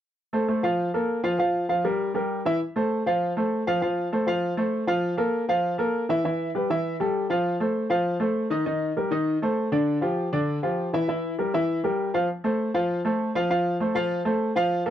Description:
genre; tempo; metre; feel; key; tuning
latin; 198 BPM; 4/4; straight; F major; A4 = 440 Hz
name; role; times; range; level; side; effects
clear concert grand piano; solo; 0.3-14.9 s; D3 to F5; -23 LUFS; equal; none
room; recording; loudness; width
light reverb; dry, close 1970s-style studio recording; -23 LUFS; side -11 dB against mid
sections
0.2-2.6 A section; 2.6-12.3 B section; 12.3-14.9 B section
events
none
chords
0.2 F; 0.8 Bb5; 1.4 Gm7; 2.0 Edim; 2.6 F; 5.0 Bb5; 6.2 Em; 6.8 A5; 7.5 F7; 8.7 Eb; 9.3 Cm69; 9.9 Dmadd11; 11.1 Edim; 12.3 F

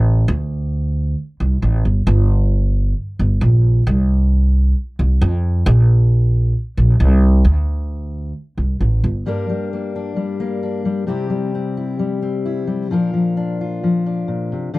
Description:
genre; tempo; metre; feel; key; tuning
indie folk with a building arrangement; 133 BPM; 4/4; straight; unclear; A4 = 440 Hz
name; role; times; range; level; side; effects
upright bass; bass; 0.0-9.2 s; G1 to F2; -14 LUFS; equal; none
fingerpicked steel-string acoustic guitar; accompaniment; 9.3-14.8 s; G2 to Bb4; -19 LUFS; left 3 dB; none
room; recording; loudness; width
little or no reverb; dry, close 1970s-style studio recording; -15 LUFS; side -20 dB against mid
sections
0.0-9.3 A section; 9.3-14.8 B section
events
none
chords
0.3 D5; 2.1 Gm; 3.9 Csus4; 5.7 Bbsus2; 7.5 D5; 9.3 Gm; 11.1 C; 12.9 Bb

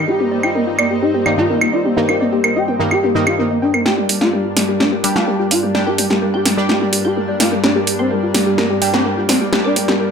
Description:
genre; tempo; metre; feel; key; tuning
melodic techno; 127 BPM; 4/4; straight; G minor; A4 = 440 Hz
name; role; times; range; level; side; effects
expressive portamento lead; melody; 0.0-10.1 s; G3 to G4; -19 LUFS; equal; analog chorus, tape echo
lush unison pad; sustained chords; 0.0-10.1 s; G2 to Eb4; -23 LUFS; equal; chorus
soft round pluck; arpeggios; 0.0-10.1 s; F4 to G5; -22 LUFS; left 1 dB; chorus, digital delay
punchy analog drum machine; drums; 0.4-10.0 s; claves, hi-hat, snare drum; -18 LUFS; equal; overdrive
synth brass stab; stabs; 1.3-10.1 s; G2 to G4; -21 LUFS; right 1 dB; chorus, phaser, digital delay
glassy wavetable pluck; second line; 3.9-10.1 s; G4 to G5; -26 LUFS; left 3 dB; chorus, digital delay
bowed-like drone; drone; 5.0-10.1 s; G2; -30 LUFS; right 1 dB; built-in reverb
room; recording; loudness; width
moderate digital room reverb, RT60 1.1 s, digital ambience; none; -14 LUFS; side -6 dB against mid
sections
0.0-3.9 A section; 3.9-10.1 B section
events
filter sweep on analog synth lead 0.0-3.9; build-up 3.9-10.1; drum fill 3.9-10.1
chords
0.0 Eb/G; 3.9 Gm

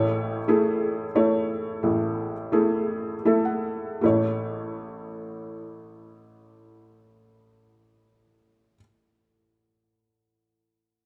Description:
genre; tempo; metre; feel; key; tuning
folk; 76-93 BPM; 3/4; straight; A major; A4 = 445 Hz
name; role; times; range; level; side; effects
felt-muted upright piano; accompaniment; 0.0-11.1 s; A1 to F#5; -26 LUFS; equal; none
room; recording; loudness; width
moderate lush hall reverb, RT60 2.4 s; rough home demo mix; -25 LUFS; mono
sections
0.0-4.0 A section; 4.0-8.8 B section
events
slowing down 0.0-4.0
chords
0.0 A

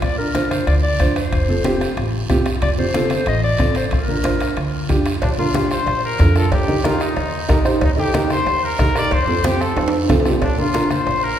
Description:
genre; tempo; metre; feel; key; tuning
latin, cumbia; 185 BPM; 4/4; straight; Bb major; A4 = 440 Hz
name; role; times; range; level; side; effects
warm clarinet; melody; 0.0-4.9 s; Bb4 to Eb5; -23 LUFS; left 2 dB; none
upright bass; bass; 0.0-11.3 s; F1 to F2; -22 LUFS; equal; none
bombo; percussion; 0.0-11.2 s; none; -23 LUFS; equal; none
congas; percussion; 0.0-11.4 s; none; -27 LUFS; left 1 dB; none
guiro; percussion; 0.0-11.4 s; none; -34 LUFS; right 4 dB; none
timbales and cowbell; percussion; 0.0-11.2 s; none; -28 LUFS; right 3 dB; none
dark upright piano; accompaniment; 0.2-11.0 s; C4 to C5; -21 LUFS; right 2 dB; none
warm trumpet; second line; 5.2-11.4 s; D4 to D5; -22 LUFS; left 3 dB; none
room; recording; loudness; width
wet scoring stage reverb, RT60 1.9 s; recorded in a church or concert hall; -16 LUFS; side -10 dB against mid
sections
0.0-5.2 A section; 5.2-11.4 B section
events
trumpet solo 5.2-11.4; drum fill 9.8-10.4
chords
0.0 Bb; 1.3 F; 3.9 Bb; 6.5 Eb; 9.1 F; 10.4 Bb

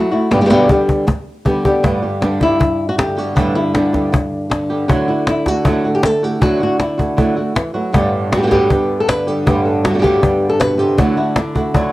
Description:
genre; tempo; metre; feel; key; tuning
flamenco; 157 BPM; 4/4; straight; G major; A4 = 441 Hz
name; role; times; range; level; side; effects
flamenco guitar; melody; 0.0-11.9 s; G2 to B4; -15 LUFS; equal; cassette tape, plate reverb
cajon; percussion; 0.3-11.9 s; none; -18 LUFS; left 1 dB; none
flamenco guitar; stabs; 1.8-11.9 s; G2 to G4; -19 LUFS; right 2 dB; cassette tape, plate reverb
room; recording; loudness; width
wet small room reverb, RT60 0.5 s; home recording on cassette; -13 LUFS; side -17 dB against mid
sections
0.0-1.8 A section; 1.8-11.9 B section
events
drum fill 0.3-1.8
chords
0.3 G; 1.8 Gadd9; 4.9 Dadd9; 7.9 Gadd9; 11.0 Dadd9

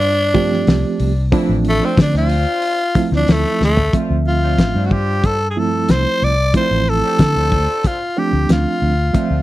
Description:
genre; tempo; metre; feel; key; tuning
straight-eighth soul blues; 92 BPM; 4/4; straight; D minor; A4 = 440 Hz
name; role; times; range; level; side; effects
growling tenor saxophone; melody; 0.0-9.4 s; A3 to D5; -19 LUFS; left 1 dB; slapback echo
clear horn section; sustained chords; 0.0-9.4 s; E3 to G4; -29 LUFS; left 2 dB; none
vintage muted fingered electric bass; bass; 0.0-9.4 s; A1 to D3; -18 LUFS; left 1 dB; none
cloth-damped thuddy drum kit; drums; 0.0-9.3 s; hi-hat, kick drum, snare drum, toms; -16 LUFS; left 1 dB; none
reed electric piano; accompaniment; 0.3-9.4 s; F3 to E5; -20 LUFS; right 4 dB; fast tremolo
room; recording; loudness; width
little or no reverb; dry, close 1970s-style studio recording; -14 LUFS; side -16 dB against mid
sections
0.0-3.9 A section; 3.9-9.4 B section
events
tenor saxophone solo 0.0-3.9; drum fill 3.6-3.9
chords
0.0 Dm7

